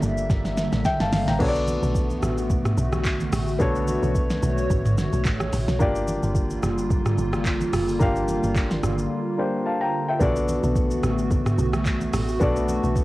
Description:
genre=amapiano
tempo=109 BPM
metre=4/4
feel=swing 55% on 16ths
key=B minor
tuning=A4 = 439 Hz
part: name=warm grand piano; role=accompaniment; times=0.0-13.0 s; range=A3 to Bb5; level=-27 LUFS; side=left 2 dB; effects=cassette tape
part: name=hollow soft pad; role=sustained chords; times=0.0-13.0 s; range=D3 to E5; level=-27 LUFS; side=equal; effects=chorus, sidechain pumping, cassette tape
part: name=deep log drum bass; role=bass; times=0.0-13.0 s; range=F#1 to B1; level=-27 LUFS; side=equal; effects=none
part: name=smooth R&B drum kit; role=drums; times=0.0-13.0 s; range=crash cymbal, handclaps, hi-hat, kick drum, rim click, shaker, snare drum, toms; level=-25 LUFS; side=equal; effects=cassette tape
part: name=congas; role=percussion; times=1.4-13.0 s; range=none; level=-33 LUFS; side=right 2 dB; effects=none
room=light reverb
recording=home recording on cassette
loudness=-20 LUFS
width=side -18 dB against mid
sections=0.0-13.0 A section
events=drum fill 0.3-1.4; grand piano fill 0.6-1.4; drums muted 9.1-10.2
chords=0.0 Gm7; 1.4 Bm7; 5.8 Gm7; 10.2 Bm7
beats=0.30 0.85 | 1.40 1.95 2.50 3.05 | 3.60 4.15 4.70 5.25 | 5.80 6.36 6.91 7.46 | 8.01 8.56 9.11 9.66 | 10.21 10.76 11.31 11.86 | 12.41 12.96

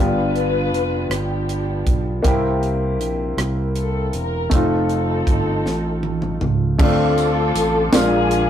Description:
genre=slow gospel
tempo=53 BPM (dotted quarters)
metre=6/8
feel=straight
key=unclear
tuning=A4 = 442 Hz
part: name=muted studio string section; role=melody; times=0.0-8.5 s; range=B3 to B4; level=-24 LUFS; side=left 2 dB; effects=none
part: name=clear baby grand piano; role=accompaniment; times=0.0-8.5 s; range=G2 to G4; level=-22 LUFS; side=left 1 dB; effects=none
part: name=dark French horn section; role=sustained chords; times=0.0-6.8 s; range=A3 to G4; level=-28 LUFS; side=right 1 dB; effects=none
part: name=fingered electric bass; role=bass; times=0.0-8.5 s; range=E1 to D2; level=-23 LUFS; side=equal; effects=none
part: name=tight funk drum kit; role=drums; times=0.4-8.5 s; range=crash cymbal, hi-hat, kick drum, rim click, snare drum, toms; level=-20 LUFS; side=right 1 dB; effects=none
part: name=percussive tonewheel organ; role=sustained chords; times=6.8-8.5 s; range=Ab3 to D6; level=-26 LUFS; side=right 1 dB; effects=slow rotary speaker, chorus vibrato
part: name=tambourine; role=percussion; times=7.2-8.3 s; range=none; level=-34 LUFS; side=left 5 dB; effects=none
room=moderate studio reverb, RT60 0.7 s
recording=rough rehearsal-room recording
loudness=-17 LUFS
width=side -10 dB against mid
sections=0.0-6.8 A section; 6.8-8.5 B section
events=drum fill 5.7-6.8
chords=0.0 G7; 2.2 C7; 4.5 F7; 6.8 Dm7; 7.9 Bb7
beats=1.10 | 2.24 3.38 | 4.52 5.66 | 6.79 7.93

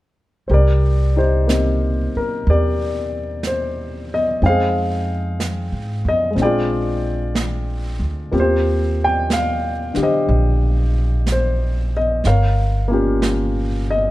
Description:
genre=jazz ballad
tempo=61 BPM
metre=4/4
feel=swing 67% on 8ths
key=C minor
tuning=A4 = 445 Hz
part: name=dark grand piano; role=accompaniment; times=0.5-14.1 s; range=D3 to G5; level=-20 LUFS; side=left 1 dB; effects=none
part: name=upright bass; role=bass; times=0.5-14.1 s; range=G1 to Ab2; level=-19 LUFS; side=equal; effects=none
part: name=jazz brush drum kit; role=drums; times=0.5-14.1 s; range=brushed snare drum, hi-hat, snare drum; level=-28 LUFS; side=right 2 dB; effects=none
room=little or no reverb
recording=none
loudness=-16 LUFS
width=side -16 dB against mid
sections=0.5-14.1 A section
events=none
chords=0.5 Cm9; 4.4 Fm7; 6.4 Bb13; 8.3 Eb6; 12.2 Gm7b5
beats=| 0.49 1.47 2.45 3.43 | 4.42 5.39 6.37 7.35 | 8.33 9.31 10.29 11.26 | 12.24 13.22

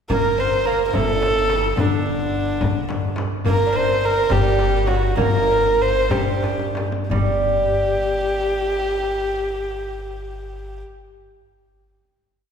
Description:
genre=Persian modal ensemble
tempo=57-72 BPM (dotted quarters)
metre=6/8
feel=straight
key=G avaz esfahan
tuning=A4 = 440 Hz
part: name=warm kamancheh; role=melody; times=0.1-10.8 s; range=D4 to C5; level=-20 LUFS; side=equal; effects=none
part: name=lute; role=second line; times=0.1-10.8 s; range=D3 to D4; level=-25 LUFS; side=right 2 dB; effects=none
part: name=upright bass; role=bass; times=0.1-10.8 s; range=G1 to G2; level=-24 LUFS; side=equal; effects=none
part: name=frame drum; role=percussion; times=0.1-7.4 s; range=none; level=-30 LUFS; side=left 2 dB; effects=none
part: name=tombak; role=percussion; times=0.1-7.4 s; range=none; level=-28 LUFS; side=left 4 dB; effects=none
room=wet concert hall reverb, RT60 2.1 s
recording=recorded in a church or concert hall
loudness=-17 LUFS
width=side -7 dB against mid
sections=0.1-7.1 A section; 7.1-11.3 final note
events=slowing down 3.5-7.1; drum fill 6.4-7.1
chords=none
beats=| 0.10 0.94 | 1.78 2.62 | 3.45 4.30 | 5.18 6.11 | 7.11 8.16 | 9.21 10.26

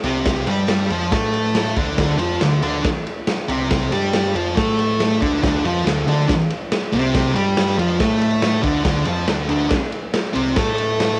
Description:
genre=garage rock duo or trio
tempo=140 BPM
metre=4/4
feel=straight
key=D minor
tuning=A4 = 440 Hz
part: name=thick fuzz guitar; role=riff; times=0.0-11.2 s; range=C3 to A4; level=-21 LUFS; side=equal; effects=distortion
part: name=growling picked electric bass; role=bass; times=0.0-11.2 s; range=C2 to A2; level=-28 LUFS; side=equal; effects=overdrive, tube saturation
part: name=raw garage drum kit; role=drums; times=0.0-11.1 s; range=kick drum, ride cymbal, snare drum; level=-24 LUFS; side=equal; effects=cassette tape
room=small room ambience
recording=home recording on cassette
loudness=-19 LUFS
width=mono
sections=0.0-11.2 A section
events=none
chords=0.0 Dm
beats=| 0.27 0.70 1.13 1.56 | 1.99 2.42 2.85 3.28 | 3.71 4.14 4.57 5.00 | 5.43 5.86 6.29 6.72 | 7.15 7.58 8.00 8.43 | 8.86 9.29 9.72 10.14 | 10.57 11.00

